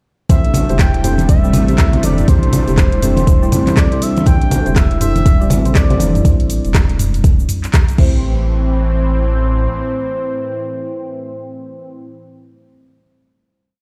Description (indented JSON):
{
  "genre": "afro house",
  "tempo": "121 BPM",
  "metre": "4/4",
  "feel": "swing 60% on 16ths",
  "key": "A minor",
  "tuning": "A4 = 441 Hz",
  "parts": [
    { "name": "expressive synth lead", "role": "melody", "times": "0.3-12.1 s", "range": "C5 to G5", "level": "-26 LUFS", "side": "equal", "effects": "chorus, digital delay" },
    { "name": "warm analog pad", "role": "sustained chords", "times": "0.3-12.1 s", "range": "A2 to C4", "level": "-27 LUFS", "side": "equal", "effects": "chorus, sidechain pumping" },
    { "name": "marimba with soft mallets", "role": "arpeggios", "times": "0.3-8.4 s", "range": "G3 to A4", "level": "-25 LUFS", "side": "equal", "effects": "sidechain pumping, digital delay" },
    { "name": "deep mellow chord stab", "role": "stabs", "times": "0.3-12.1 s", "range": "A3 to D5", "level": "-27 LUFS", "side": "equal", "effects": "chorus, sidechain pumping, digital delay" },
    { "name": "warm sub bass", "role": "bass", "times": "0.3-9.7 s", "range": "E1 to A1", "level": "-19 LUFS", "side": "equal", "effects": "sidechain pumping" },
    { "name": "afro-pop drum kit", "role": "drums", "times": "0.3-8.1 s", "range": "crash cymbal, handclaps, hi-hat, rim click, shaker, toms", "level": "-24 LUFS", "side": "equal", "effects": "overdrive, studio reverb" },
    { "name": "electronic kick drum", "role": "drums", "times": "0.3-8.1 s", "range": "none", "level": "-14 LUFS", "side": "equal", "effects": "studio reverb" },
    { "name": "congas", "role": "percussion", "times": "0.3-6.1 s", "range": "none", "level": "-21 LUFS", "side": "equal", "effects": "none" }
  ],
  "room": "light reverb",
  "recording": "played on a big sound system in a bare room, large studio reverb",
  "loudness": "-14 LUFS",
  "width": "mono",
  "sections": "0.3-8.2 drop; 8.2-12.2 final hit",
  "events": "drop 0.3-8.2",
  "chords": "0.3 Am7"
}